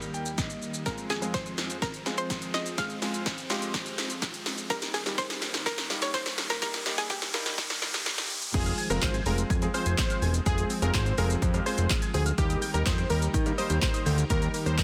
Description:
dance-pop; 125 BPM; 4/4; straight; F minor; A4 = 443 Hz
clear concert grand piano; accompaniment; 0.0-14.8 s; F3 to G5; -38 LUFS; equal; sidechain pumping
lush unison pad; sustained chords; 0.0-14.8 s; Eb2 to Bb4; -41 LUFS; equal; chorus, sidechain pumping
punchy analog drum machine; drums; 0.0-14.8 s; crash cymbal, handclaps, hi-hat, kick drum, shaker, snare drum; -32 LUFS; equal
riser; sound effects; 0.1-8.5 s; -41 LUFS; equal
analog pluck; melody; 0.9-7.8 s; G4 to F5; -36 LUFS; equal; chorus, tape echo
plucky unison lead; melody; 8.5-14.8 s; G4 to C5; -36 LUFS; equal
tight sequenced synth; arpeggios; 8.5-14.8 s; Bb3 to Ab5; -41 LUFS; equal; chorus, sidechain pumping, tape echo
fat analog bass; bass; 8.5-14.8 s; E1 to Eb3; -30 LUFS; equal; sidechain pumping
light reverb, digital ambience; dense, heavily limited modern master, high-pass filter; -28 LUFS; mono
0.0-8.5 A section; 8.5-14.8 B section
build-up 0.0-8.5; drum fill 0.0-8.5; grand piano fill 0.0-0.9; riser 0.1-8.5; filter sweep 0.0-8.5; drop 8.5-14.8
0.0 Eb; 0.9 Fm; 4.7 Eb; 8.5 Fm; 12.4 Eb

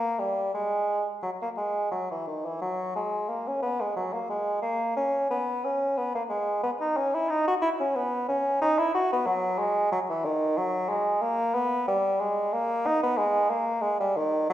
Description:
classical, baroque-style fantasia for unaccompanied bassoon; 60 BPM (dotted quarters); 6/8; rubato; B major, G# minor from 10.6 s; A4 = 437 Hz
clear bassoon; solo; 0.0-14.5 s; D#3 to F#4; -25 LUFS; equal
wet recital hall reverb, RT60 1.5 s; recorded in a church or concert hall; -25 LUFS; side -12 dB against mid
0.0-2.6 A section; 2.6-14.5 A section

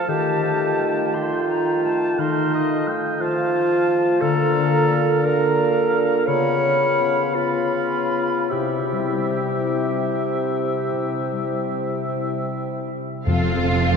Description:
classical, slow romantic movement for symphony orchestra; 48-60 BPM (dotted quarters); 12/8; rubato; F major; A4 = 439 Hz
silver concert flute; second line; 0.0-12.9 s; G5 to C6; -29 LUFS; left 1 dB
warm clarinet; second line; 0.0-12.1 s; Eb4 to Db5; -23 LUFS; equal
warm oboe; second line; 0.0-12.9 s; Eb5 to G5; -30 LUFS; right 2 dB
dark bassoon; accompaniment; 0.0-12.9 s; C3 to F3; -26 LUFS; right 2 dB
mellow French horn section; sustained chords; 0.0-12.9 s; A3 to F4; -26 LUFS; left 2 dB
concert harp; arpeggios; 0.0-14.0 s; C3 to D5; -28 LUFS; left 4 dB
warm symphonic violin section; melody; 13.3-14.0 s; F5; -30 LUFS; left 5 dB
rich symphonic violin section; second line; 13.3-14.0 s; F4; -24 LUFS; equal
clear symphonic viola section; accompaniment; 13.3-14.0 s; C4 to A4; -26 LUFS; equal
clear symphonic double bass section; bass; 13.3-14.0 s; F1; -24 LUFS; right 5 dB
warm symphonic cello section; bass; 13.3-14.0 s; F2; -25 LUFS; right 4 dB
timpani; percussion; 13.3-14.0 s; F2; -22 LUFS; left 1 dB
wet cathedral reverb, RT60 4.3 s; dark, warm production; -18 LUFS; side -6 dB against mid
0.0-13.3 A section
0.1 F7/Eb; 4.2 Bb/D; 6.3 Db7; 8.5 C; 13.3 F

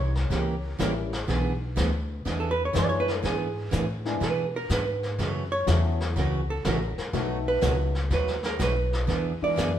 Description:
country, western swing; 123 BPM; 4/4; swing 68% on 8ths; E mixolydian; A4 = 441 Hz
hollow-body jazz guitar; second line; 0.0-9.8 s; G#4 to D5; -29 LUFS; right 3 dB
upright bass; bass; 0.0-9.8 s; A1 to B2; -28 LUFS; left 1 dB
vintage brush drum kit; drums; 0.2-9.8 s; brushed snare drum, hi-hat, kick drum, snare drum; -33 LUFS; left 1 dB
picked steel-string acoustic guitar; accompaniment; 0.3-9.7 s; B2 to A#4; -31 LUFS; right 3 dB
dark upright piano; accompaniment; 0.8-9.8 s; E3 to A#4; -33 LUFS; left 5 dB
wet stone room reverb, RT60 1.2 s; band playing live in one room; -24 LUFS; side -10 dB against mid
0.0-9.8 A section
hollow-body jazz guitar solo 0.0-9.8
0.0 A#dim7; 1.3 E7; 5.2 F#m7; 7.1 B7; 9.1 E7

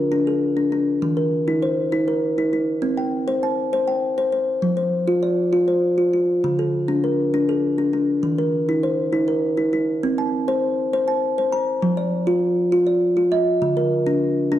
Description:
southern african traditional; 133 BPM (dotted quarters); 12/8; straight; A4 = 441 Hz
kalimba; solo; 0.0-14.6 s; D3-29c to Bb5+29c; -18 LUFS; equal
moderate recital hall reverb, RT60 1.6 s; dark, warm production; -18 LUFS; side -12 dB against mid
0.0-10.0 A section; 10.0-14.6 A section
0.0 D5; 1.0 Eb5; 2.8 C5; 4.6 F5; 6.4 D5; 8.2 Eb5; 10.0 N.C.; 11.8 Dm/F; 13.6 Bb/D

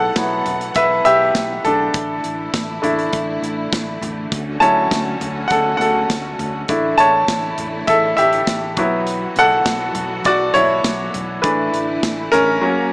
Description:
piano-driven pop; 101 BPM; 4/4; straight; A4 = 440 Hz
bright grand piano; accompaniment; 0.0-12.9 s; E3 to A5; -16 LUFS; equal
rich studio string section; sustained chords; 0.0-12.9 s; C#3 to F#5; -27 LUFS; equal
fingered electric bass; bass; 0.0-12.6 s; A1 to D2; -30 LUFS; equal
modern studio drum kit; drums; 0.2-12.5 s; hi-hat, kick drum, snare drum, toms; -24 LUFS; equal
moderate lush hall reverb, RT60 1.6 s; small speaker sound; -15 LUFS; side -27 dB against mid
0.0-12.9 A section
grand piano solo 0.0-12.9; break 12.6-12.9
0.0 Esus2/B; 1.9 Asus4; 4.3 Dmaj7; 6.7 Asus4; 8.8 Esus2/B; 11.4 Asus4

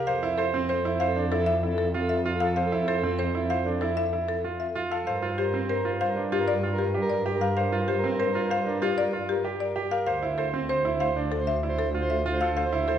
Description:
classical, minimalist pattern music; 96 BPM; 4/4; straight; A4 = 443 Hz
buzzing marimba with medium hard mallets; melody; 0.0-13.0 s; G4 to F5; -29 LUFS; left 6 dB
bright concert grand piano; arpeggios; 0.0-13.0 s; C4 to C5; -28 LUFS; right 4 dB
mellow soprano saxophone; second line; 0.1-12.9 s; A4 to C5; -33 LUFS; right 2 dB
dark studio double bass section; bass; 0.1-13.0 s; D2 to G2; -30 LUFS; right 1 dB
wet scoring stage reverb, RT60 1.9 s; -24 LUFS; side -9 dB against mid
0.0-13.0 A section
0.1 Fmaj7; 5.1 Gm7; 10.1 Dm7

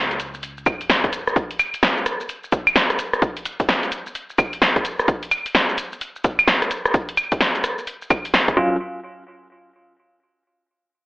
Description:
UK garage, two-step garage; 129 BPM; 4/4; swing 63% on 16ths; Eb minor; A4 = 440 Hz
organ-like FM bass; bass; 0.0-1.3, 8.6-8.8 s; Eb1 to Db2; -42 LUFS; equal; tube saturation, sidechain pumping
punchy analog drum machine; drums; 0.1-8.6 s; claves, hi-hat, rim click, shaker, snare drum; -19 LUFS; equal
electronic kick drum; drums; 0.7-8.7 s; -22 LUFS; equal
bell-like tine electric piano; stabs; 8.6-8.8 s; Gb3 to F4; -21 LUFS; equal; phaser, tape echo
light reverb; telephone sound; -18 LUFS; side -22 dB against mid
0.0-8.8 A section; 8.8-10.7 B section
0.0 N.C.; 8.6 Ebm9; 8.8 N.C.

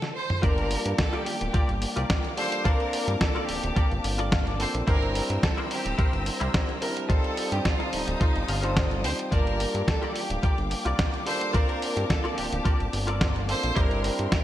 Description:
nu-disco, nu disco; 108 BPM; 4/4; swing 53% on 16ths; G minor; A4 = 440 Hz
rich chamber violin section; melody; 0.0-14.4 s; Eb4 to C5; -32 LUFS; equal; digital delay
dusty soul sampler-style drum kit; drums; 0.0-14.4 s; hi-hat, snare drum, toms; -30 LUFS; equal; gated reverb
overdriven tine electric piano; accompaniment; 0.4-14.4 s; G3 to A5; -32 LUFS; equal; sidechain pumping, digital delay
warm symphonic string section; sustained chords; 0.4-14.4 s; Bb3 to E6; -37 LUFS; left 3 dB; sidechain pumping
direct-recorded clean electric guitar; riff; 0.4-14.1 s; Eb4 to G5; -34 LUFS; left 1 dB; ensemble chorus, digital delay
fat analog bass; bass; 0.4-14.3 s; D1 to G2; -29 LUFS; equal
electronic kick drum; drums; 0.4-14.4 s; -25 LUFS; equal
light reverb; bright 1980s-style digital production; -23 LUFS; side -13 dB against mid
0.4-14.4 A section
break 0.0-0.4; drum fill 0.0-0.4; drop 0.4-14.4; clean electric guitar fill 4.0-4.9, 8.2-9.3
0.4 Gm7; 4.9 C7; 7.1 F7; 9.3 Gm7; 13.8 C7

